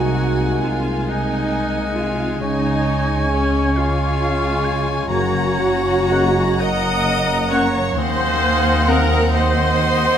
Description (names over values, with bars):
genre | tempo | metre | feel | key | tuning
classical, slow romantic movement for symphony orchestra | 44 BPM (dotted quarters) | 6/8 | rubato | Db major | A4 = 439 Hz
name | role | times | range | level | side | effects
rich chamber violin section | melody | 0.0-10.2 s | Gb5 to Bb5 | -28 LUFS | left 4 dB | none
clear clarinet | second line | 0.0-10.2 s | Db5 to Gb5 | -29 LUFS | left 2 dB | none
clear oboe | second line | 0.0-10.2 s | Eb5 to Ab5 | -30 LUFS | equal | none
concert flute | second line | 0.0-10.2 s | Gb5 to Db6 | -30 LUFS | left 3 dB | none
warm studio violin section | second line | 0.0-10.2 s | Db5 to Eb6 | -29 LUFS | left 2 dB | none
mellow bassoon | accompaniment | 0.0-10.2 s | Gb3 to C4 | -29 LUFS | right 2 dB | none
rich studio viola section | accompaniment | 0.0-10.2 s | Db4 to Eb5 | -21 LUFS | right 1 dB | none
dark French horn section | sustained chords | 0.0-9.0 s | Ab3 to Eb4 | -26 LUFS | left 4 dB | none
concert harp | arpeggios | 0.0-10.2 s | Gb2 to C6 | -29 LUFS | left 9 dB | none
dark trumpet section | stabs | 0.0-9.0 s | Gb5 to Ab5 | -28 LUFS | equal | none
rich studio cello section | bass | 0.0-10.2 s | Eb2 to Db3 | -26 LUFS | right 3 dB | none
warm studio double bass section | bass | 0.0-10.2 s | Gb1 to Eb2 | -23 LUFS | right 2 dB | none
room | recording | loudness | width
moderate scoring stage reverb, RT60 1.6 s | none | -16 LUFS | side -9 dB against mid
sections
0.0-10.2 A section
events
none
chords
0.0 Ab7/C; 2.4 Db; 5.1 Gb; 8.0 Cdim/Eb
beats
1.07 | 2.40 3.76 | 5.09 6.60 | 7.95 9.33